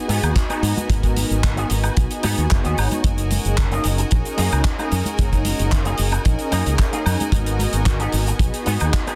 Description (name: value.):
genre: nu-disco, nu disco.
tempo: 112 BPM.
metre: 4/4.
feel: straight.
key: F# major.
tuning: A4 = 436 Hz.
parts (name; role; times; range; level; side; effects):
warm analog pad; accompaniment; 0.0-9.2 s; B3 to A#5; -29 LUFS; equal; analog chorus, tape echo.
clear studio violin section; sustained chords; 0.0-9.2 s; B3 to G#5; -33 LUFS; equal; sidechain pumping.
electric guitar with an envelope filter; riff; 0.1-9.2 s; A#3 to G#4; -32 LUFS; equal; ensemble chorus, tape echo.
modern bright fingered electric bass; bass; 0.1-8.9 s; F#1 to G#2; -24 LUFS; equal; sidechain pumping.
damped 70s drum kit; drums; 0.1-9.2 s; handclaps, hi-hat, shaker, woodblock; -29 LUFS; equal; soft clipping on snare.
egg shaker and congas; percussion; 0.2-9.2 s; none; -34 LUFS; equal; none.
kick drum; drums; 0.4-9.0 s; none; -21 LUFS; equal; none.
room: studio reverb.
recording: dense, heavily limited modern master.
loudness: -20 LUFS.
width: mono.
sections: 0.0-9.2 A section.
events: none.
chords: 0.0 F#69; 7.3 G#m7.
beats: 0.36 | 0.90 1.44 1.97 2.51 | 3.04 3.58 4.12 4.65 | 5.19 5.72 6.26 6.79 | 7.33 7.87 8.40 8.94.